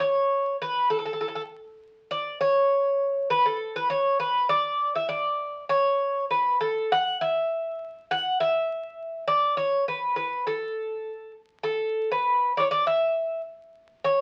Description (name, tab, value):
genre	greek folk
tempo	101 BPM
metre	2/4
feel	straight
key	A major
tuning	A4 = 440 Hz
part	Greek bouzouki	solo	0.0-14.2 s	A4 to F#5	-25 LUFS	equal	none
room	wet studio reverb, RT60 0.6 s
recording	very old 78 rpm record, vinyl crackle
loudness	-26 LUFS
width	mono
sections	0.0-2.1 A section; 2.1-11.6 A section; 11.6-14.2 B section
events	none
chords	none